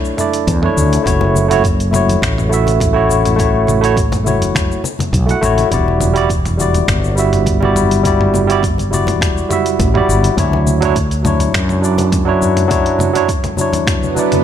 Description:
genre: sunset chillout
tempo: 103 BPM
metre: 4/4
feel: straight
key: unclear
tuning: A4 = 440 Hz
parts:
  - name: barky tine electric piano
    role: accompaniment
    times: 0.0-14.4 s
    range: F#3 to F#5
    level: -15 LUFS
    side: moving between left 5 dB and right 6 dB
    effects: auto-pan, digital delay
  - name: fretless electric bass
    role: bass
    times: 0.0-14.1 s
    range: E1 to F#2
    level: -16 LUFS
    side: equal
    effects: none
  - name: dusty soul sampler-style drum kit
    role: drums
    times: 0.1-14.4 s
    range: finger snaps, hi-hat, shaker, toms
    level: -22 LUFS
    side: equal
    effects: overdrive, studio reverb
  - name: congas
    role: percussion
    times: 0.2-14.4 s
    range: none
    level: -24 LUFS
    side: left 3 dB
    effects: none
  - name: electronic kick drum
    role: drums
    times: 0.5-14.0 s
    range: none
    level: -19 LUFS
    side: equal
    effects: studio reverb
  - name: swell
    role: sound effects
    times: 14.0-14.4 s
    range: none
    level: -18 LUFS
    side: right 2 dB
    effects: none
room: light reverb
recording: none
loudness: -12 LUFS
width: side -9 dB against mid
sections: 0.0-14.4 A section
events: swell 14.0-14.4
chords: 0.0 Bm11 (rootless); 1.1 F#m7; 5.7 Em9; 10.4 Dmaj9

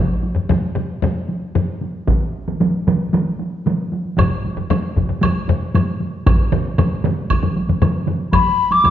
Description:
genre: japanese traditional, taiko drum ensemble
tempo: 115 BPM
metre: 4/4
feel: straight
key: unclear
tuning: A4 = 440 Hz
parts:
  - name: taiko ensemble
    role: percussion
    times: 0.1-8.9 s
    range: none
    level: -22 LUFS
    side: right 1 dB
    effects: none
  - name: taiko ensemble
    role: percussion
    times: 0.4-8.9 s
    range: none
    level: -20 LUFS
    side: left 3 dB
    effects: none
  - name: taiko ensemble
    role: percussion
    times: 2.1-8.2 s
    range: none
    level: -21 LUFS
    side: right 4 dB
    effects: none
  - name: taiko ensemble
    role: percussion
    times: 2.1-8.5 s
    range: none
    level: -21 LUFS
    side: equal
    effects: none
  - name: woodblock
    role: percussion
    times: 4.2-8.9 s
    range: none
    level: -28 LUFS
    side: right 3 dB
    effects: none
  - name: mellow hollow wooden piccolo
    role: melody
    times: 8.3-8.9 s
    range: B5 to D6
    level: -13 LUFS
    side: left 3 dB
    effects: none
room: wet recital hall reverb, RT60 1.6 s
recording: nothing above 8.0 kHz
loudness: -16 LUFS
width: side -11 dB against mid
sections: 0.0-8.3 A section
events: speeding up 0.0-8.9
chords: none

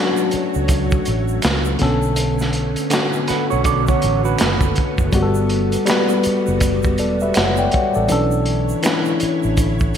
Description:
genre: R&B, neo-soul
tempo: 81 BPM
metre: 4/4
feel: swing 60% on 16ths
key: B minor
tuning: A4 = 440 Hz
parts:
  - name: tine electric piano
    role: accompaniment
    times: 0.0-10.0 s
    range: D3 to G5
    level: -19 LUFS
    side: left 2 dB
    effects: none
  - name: soft string machine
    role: sustained chords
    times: 0.2-10.0 s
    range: D3 to C#5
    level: -26 LUFS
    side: right 1 dB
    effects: ensemble chorus
  - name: egg shaker and finger snaps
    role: percussion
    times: 0.2-10.0 s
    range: none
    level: -33 LUFS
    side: right 9 dB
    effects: none
  - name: vintage muted fingered electric bass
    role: bass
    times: 0.3-10.0 s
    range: E1 to C#2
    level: -21 LUFS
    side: right 1 dB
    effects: none
  - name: crunchy breakbeat drum kit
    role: drums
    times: 0.3-10.0 s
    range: hi-hat, kick drum, snare drum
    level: -20 LUFS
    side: right 1 dB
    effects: gated reverb
  - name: electric guitar through a small old amp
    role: second line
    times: 3.3-5.1 s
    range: F#4 to D5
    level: -22 LUFS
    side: right 10 dB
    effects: none
room: moderate lush hall reverb, RT60 2.8 s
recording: bright 1980s-style digital production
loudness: -15 LUFS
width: side -8 dB against mid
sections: 0.0-10.0 A section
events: none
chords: 0.0 Dmaj7; 1.8 Bm9; 5.1 Gmaj9; 8.1 Bm11

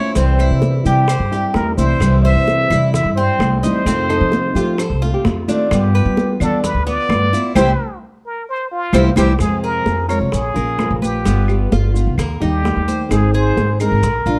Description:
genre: latin, Cuban son and guajira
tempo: 130 BPM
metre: 4/4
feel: straight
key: F minor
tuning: A4 = 440 Hz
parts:
  - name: trumpet with plunger mute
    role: melody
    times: 0.0-14.4 s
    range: F4 to E5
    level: -23 LUFS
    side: equal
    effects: plate reverb
  - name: fingerpicked steel-string acoustic guitar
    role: accompaniment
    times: 0.0-14.4 s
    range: C3 to C5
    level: -23 LUFS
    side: equal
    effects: none
  - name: Cuban tres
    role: arpeggios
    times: 0.0-14.4 s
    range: Bb3 to Db5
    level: -26 LUFS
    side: equal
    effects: none
  - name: upright bass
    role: bass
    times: 0.2-14.4 s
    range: G1 to G3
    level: -20 LUFS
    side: equal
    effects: none
  - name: bongos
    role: percussion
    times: 0.2-14.3 s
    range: none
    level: -31 LUFS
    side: equal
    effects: none
  - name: congas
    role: percussion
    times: 0.2-14.4 s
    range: none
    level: -26 LUFS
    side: equal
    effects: none
  - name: maracas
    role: percussion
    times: 0.2-14.4 s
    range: none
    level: -38 LUFS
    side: equal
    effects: none
  - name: claves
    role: percussion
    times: 0.4-14.0 s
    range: none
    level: -35 LUFS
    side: equal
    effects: none
  - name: nylon-string guitar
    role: second line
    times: 4.1-12.3 s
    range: Eb4 to C5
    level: -24 LUFS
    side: equal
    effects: none
room: moderate studio reverb, RT60 0.8 s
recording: dark, warm production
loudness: -16 LUFS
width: mono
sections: 0.0-9.4 A section; 9.4-14.4 B section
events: band accent 7.6-9.4; drum fill 8.7-9.4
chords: 0.2 C; 3.9 F7; 5.7 G7; 7.6 C; 9.4 Fm; 10.3 Bbm; 11.3 G7; 12.2 Eb; 13.1 Ab

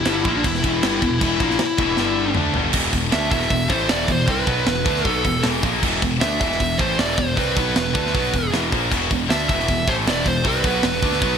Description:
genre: heavy metal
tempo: 156 BPM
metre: 4/4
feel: straight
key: E minor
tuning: A4 = 440 Hz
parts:
  - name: high-gain lead guitar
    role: melody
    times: 0.0-11.4 s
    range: D4 to E5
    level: -23 LUFS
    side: equal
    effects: distortion, digital delay
  - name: heavy high-gain guitar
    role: riff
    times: 0.0-11.4 s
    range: E2 to D4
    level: -25 LUFS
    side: left 11 dB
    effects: distortion
  - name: heavy high-gain guitar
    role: riff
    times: 0.0-11.4 s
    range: E2 to D4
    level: -27 LUFS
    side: right 10 dB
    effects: distortion
  - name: high-gain distorted guitar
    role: riff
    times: 0.0-11.4 s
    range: E2 to D4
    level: -27 LUFS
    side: equal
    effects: distortion
  - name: fuzz picked electric bass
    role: bass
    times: 0.0-11.4 s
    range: E1 to D2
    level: -26 LUFS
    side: equal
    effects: overdrive
  - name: tight metal drum kit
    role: drums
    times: 0.1-11.3 s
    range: crash cymbal, hi-hat, kick drum, snare drum, toms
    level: -23 LUFS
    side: right 1 dB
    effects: none
room: moderate lush hall reverb, RT60 1.9 s, small room ambience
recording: bright 1980s-style digital production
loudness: -17 LUFS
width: side -7 dB against mid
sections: 0.0-2.7 A section; 2.7-11.4 B section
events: drum fill 2.0-2.7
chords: 0.0 Em; 2.0 G5; 2.4 Gsus2; 2.7 Em

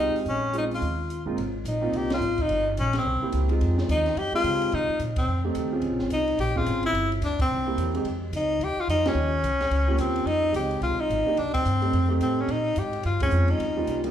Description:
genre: jazz, small-group swing and bop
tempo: 216 BPM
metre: 4/4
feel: swing 61% on 8ths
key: Ab major, F minor from 10.3 s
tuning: A4 = 437 Hz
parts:
  - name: clear tenor saxophone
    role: melody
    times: 0.0-14.1 s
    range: C4 to G4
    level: -25 LUFS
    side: left 1 dB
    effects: none
  - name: warm grand piano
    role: accompaniment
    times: 0.0-14.1 s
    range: Ab2 to Ab4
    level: -30 LUFS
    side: right 2 dB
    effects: none
  - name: upright bass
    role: bass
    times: 0.0-14.1 s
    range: G1 to Db3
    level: -28 LUFS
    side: equal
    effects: none
  - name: compact cocktail drum kit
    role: drums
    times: 0.2-14.1 s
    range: hi-hat, kick drum, ride cymbal, snare drum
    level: -35 LUFS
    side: equal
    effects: none
room: wet large studio reverb, RT60 1.3 s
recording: band playing live in one room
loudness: -22 LUFS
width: side -10 dB against mid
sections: 0.0-1.4 A section; 1.4-10.3 B section; 10.3-14.1 A section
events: band accent 2.1, 5.1, 7.4, 9.0, 11.5, 13.2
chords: 0.3 Bbm7; 0.8 Eb69; 1.4 Ab6; 2.5 Gdim; 3.0 C7; 3.6 Fm7; 4.7 Bbsus24; 5.3 F7; 5.8 Bbm7; 6.9 G5; 7.5 C7; 8.0 Dbadd9; 9.2 Eb7; 10.3 Fm7; 11.4 Cm; 11.9 F7; 12.5 Bbm9; 13.6 Eb7

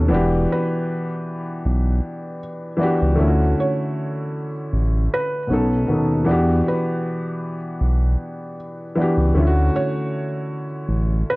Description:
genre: lo-fi hip hop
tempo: 78 BPM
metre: 4/4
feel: swing 55% on 16ths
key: E dorian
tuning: A4 = 441 Hz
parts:
  - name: felt-muted upright piano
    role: melody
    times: 0.0-11.4 s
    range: B4 to C#5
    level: -27 LUFS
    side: right 2 dB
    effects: low-pass filter
  - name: dark upright piano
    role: accompaniment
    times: 0.0-11.4 s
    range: B2 to A4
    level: -21 LUFS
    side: equal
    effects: cassette tape, low-pass filter
  - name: smooth gliding synth bass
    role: bass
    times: 0.0-11.2 s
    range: E1 to E2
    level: -18 LUFS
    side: equal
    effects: none
room: moderate studio reverb, RT60 0.7 s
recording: cassette tape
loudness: -18 LUFS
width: side -23 dB against mid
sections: 0.0-11.4 A section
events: none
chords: 0.1 Em7; 3.2 Dmaj7; 5.5 B7; 6.3 Em7; 9.3 Dmaj7

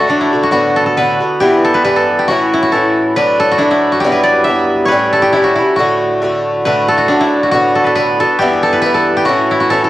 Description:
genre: celtic folk, Celtic polka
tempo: 137 BPM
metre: 2/4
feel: swing 55% on 8ths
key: D major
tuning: A4 = 440 Hz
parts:
  - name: koto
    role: melody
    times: 0.0-9.9 s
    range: D4 to E5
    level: -13 LUFS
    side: equal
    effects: cassette tape
  - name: Irish bouzouki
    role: accompaniment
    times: 0.0-9.9 s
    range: G2 to F#4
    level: -13 LUFS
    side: equal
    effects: cassette tape
room: moderate spring reverb, RT60 1.7 s, small room ambience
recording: home recording on cassette, vinyl crackle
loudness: -10 LUFS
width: side -15 dB against mid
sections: 0.0-6.7 A section; 6.7-9.9 A section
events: none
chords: 0.0 D; 0.5 Bm7; 1.4 Em; 2.3 A; 3.2 D; 4.0 Emadd9; 4.9 A7; 5.8 D; 7.5 Bm7; 8.4 Em; 9.3 A

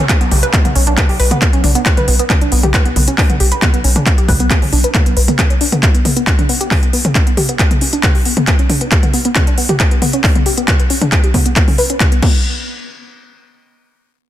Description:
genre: driving peak-time techno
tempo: 136 BPM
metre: 4/4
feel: straight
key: B minor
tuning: A4 = 438 Hz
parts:
  - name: analog pluck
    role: riff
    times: 0.0-12.4 s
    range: B3 to B4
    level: -19 LUFS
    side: equal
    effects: chorus, sidechain pumping, tape echo
  - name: downlifter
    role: sound effects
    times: 0.0-1.9 s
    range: none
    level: -28 LUFS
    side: equal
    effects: none
  - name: electronic kick drum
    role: drums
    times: 0.1-12.3 s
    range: none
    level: -14 LUFS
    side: equal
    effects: small room ambience
  - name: techno drum kit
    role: drums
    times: 0.1-12.3 s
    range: crash cymbal, handclaps, hi-hat, toms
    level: -16 LUFS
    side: equal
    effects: sidechain pumping on hats, small room ambience, sidechain pumping on cymbals, sidechain pumping on toms
  - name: saturated sub bass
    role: bass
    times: 0.2-5.3 s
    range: B1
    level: -15 LUFS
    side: equal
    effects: tube saturation, sidechain pumping, low-pass filter
room: light reverb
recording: dense, heavily limited modern master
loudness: -10 LUFS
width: side -12 dB against mid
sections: 0.0-12.4 A section; 12.4-14.2 B section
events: filter sweep on synth arpeggio sound 0.0-12.4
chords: 0.0 Bm; 12.2 N.C.

